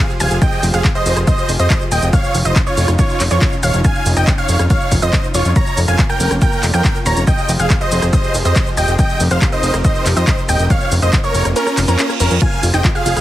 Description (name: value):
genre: uplifting trance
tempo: 140 BPM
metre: 4/4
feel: straight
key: F minor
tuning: A4 = 441 Hz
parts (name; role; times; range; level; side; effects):
- big supersaw lead; melody; 0.0-13.2 s; Db4 to Bb5; -20 LUFS; right 1 dB; sidechain pumping, dub echo
- analog pluck; second line; 0.0-13.2 s; Bb4 to Bb5; -24 LUFS; equal; chorus, sidechain pumping, dub echo
- supersaw pad; sustained chords; 0.0-13.2 s; F3 to C5; -25 LUFS; right 1 dB; sidechain pumping
- sub drop and reverse cymbal; sound effects; 0.0-0.4, 11.8-12.4 s; none; -24 LUFS; right 6 dB; none
- punchy analog drum machine; drums; 0.1-13.2 s; crash cymbal, handclaps, hi-hat, ride cymbal, rim click, shaker; -22 LUFS; equal; small room ambience
- fat analog bass; bass; 0.2-13.2 s; Eb1 to F2; -16 LUFS; equal; sidechain pumping
- electronic kick drum; drums; 0.4-12.9 s; none; -16 LUFS; equal; small room ambience
- wide unison pluck; arpeggios; 12.4-13.1 s; Eb4 to F5; -24 LUFS; left 2 dB; sidechain pumping
room: digital ambience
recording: heavily compressed radio sound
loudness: -12 LUFS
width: side -14 dB against mid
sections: 0.0-13.2 A section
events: impact 0.0-0.4; kick drops out 11.6-12.4; reverse cymbal 11.8-12.4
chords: 0.0 Fmadd9; 2.1 Dbadd9; 5.6 Bbm/F; 7.3 Fmadd9; 9.0 Cm7/F; 10.7 Bbm/F; 12.4 Fmadd9